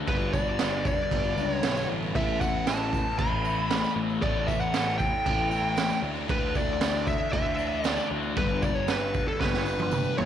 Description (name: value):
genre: psychedelic rock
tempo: 116 BPM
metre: 4/4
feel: straight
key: unclear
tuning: A4 = 440 Hz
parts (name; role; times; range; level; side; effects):
- combo organ; sustained chords; 0.0-10.3 s; E3 to B4; -39 LUFS; right 11 dB; lush chorus
- thick fuzz guitar; riff; 0.0-10.3 s; G2 to D4; -32 LUFS; left 10 dB; distortion, phaser
- fuzz lead guitar; melody; 0.1-10.3 s; A4 to B5; -29 LUFS; equal; distortion, slapback echo
- fuzz picked electric bass; bass; 0.1-10.3 s; G1 to D2; -33 LUFS; equal; overdrive
- raw garage drum kit; drums; 0.1-10.3 s; crash cymbal, kick drum, snare drum, toms; -29 LUFS; right 3 dB; none
- tambourine; percussion; 0.1-10.2 s; none; -50 LUFS; right 14 dB; none
room: light reverb, small room ambience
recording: 1960s-style stereo with parts hard left and right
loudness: -24 LUFS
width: side -10 dB against mid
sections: 0.0-10.3 A section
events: drum fill 9.4-10.3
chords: 0.1 Gmaj7; 2.1 Asus2; 6.0 Dadd9; 8.4 Gmaj7